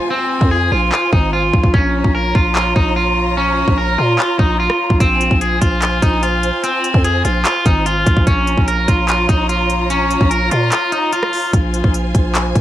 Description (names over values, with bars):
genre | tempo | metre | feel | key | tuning
hip hop, trap | 147 BPM | 4/4 | half-time | Bb minor | A4 = 440 Hz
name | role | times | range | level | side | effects
electric guitar at the edge of break-up | melody | 0.0-11.5 s | C4 to Bb4 | -17 LUFS | equal | low-pass filter, ping-pong delay
warm symphonic string section | sustained chords | 0.0-12.6 s | F4 to Bb5 | -23 LUFS | left 1 dB | none
downlifter | sound effects | 0.0-1.7 s | none | -40 LUFS | equal | none
growling 808-style bass | bass | 0.4-12.6 s | Ab1 to Bb2 | -18 LUFS | equal | none
trap drum kit | drums | 0.4-12.6 s | handclaps, hi-hat, kick drum, rim click | -16 LUFS | equal | vintage 12-bit sampler grit
room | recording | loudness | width
little or no reverb | vinyl crackle | -13 LUFS | side -12 dB against mid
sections
0.0-12.6 A section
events
break 0.0-5.0, 10.7-11.5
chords
0.0 Fm; 1.7 Bbm; 5.0 Fm/Bb; 8.3 Bbm; 11.5 Fm/Bb